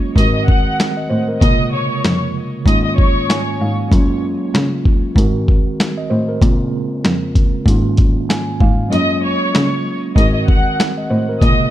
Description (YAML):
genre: hip hop, boom-bap hip-hop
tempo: 96 BPM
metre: 4/4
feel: swing 57% on 16ths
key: unclear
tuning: A4 = 443 Hz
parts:
  - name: mellow tine electric piano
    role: accompaniment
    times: 0.0-11.7 s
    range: Ab2 to Ab5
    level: -19 LUFS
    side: right 2 dB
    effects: medium stereo tremolo, cassette tape, high-pass filter, low-pass filter
  - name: warm studio violin section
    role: melody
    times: 0.2-3.4, 8.9-11.7 s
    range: Db5 to Gb6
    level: -20 LUFS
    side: left 1 dB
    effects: high-pass filter, low-pass filter, digital delay
  - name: muted cello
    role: bass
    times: 0.2-11.7 s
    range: F2 to Db3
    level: -19 LUFS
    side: equal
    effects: none
  - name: boom bap sampler-style drum kit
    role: drums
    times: 0.2-11.6 s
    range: hi-hat, kick drum, snare drum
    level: -14 LUFS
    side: equal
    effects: none
room: little or no reverb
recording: dark, warm production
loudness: -13 LUFS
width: side -13 dB against mid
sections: 0.0-11.7 A section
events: kick muted 8.9-10.2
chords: 0.2 Ab9; 1.4 Bbm9; 2.7 Db6/Ab; 3.9 Gbmaj9; 5.2 Ab9; 6.4 Bbm9; 7.7 Db6/Ab; 8.9 Gbmaj9; 10.2 Ab9